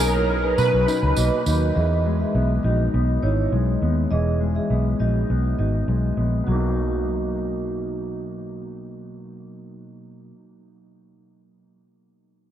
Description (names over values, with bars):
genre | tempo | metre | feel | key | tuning
indie pop, bedroom pop | 102 BPM | 4/4 | straight | B major | A4 = 440 Hz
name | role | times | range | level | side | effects
chorused retro synth keys | melody | 0.0-1.4 s | A#4 to B4 | -26 LUFS | right 1 dB | ensemble chorus, analog delay
mellow electric guitar | accompaniment | 0.0-10.4 s | B2 to D#4 | -26 LUFS | left 2 dB | lush chorus, vibrato effect, low-pass filter
string machine, violas | sustained chords | 0.0-1.7 s | F#3 to D#4 | -37 LUFS | equal | none
vintage muted fingered electric bass | bass | 0.0-10.3 s | E1 to B2 | -22 LUFS | equal | none
vibraphone with medium mallets | second line | 0.1-8.2 s | D#4 to E5 | -28 LUFS | right 3 dB | lush chorus, analog delay
tambourine | percussion | 0.6-1.6 s | none | -33 LUFS | right 5 dB | none
room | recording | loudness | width
moderate cathedral reverb, RT60 6.0 s | dreamy mix soaked in reverb | -19 LUFS | side -10 dB against mid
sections
0.0-1.8 A section; 1.8-6.5 B section; 6.5-8.8 C section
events
none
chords
0.0 Bmaj7; 1.8 Emaj7; 6.5 Bmaj7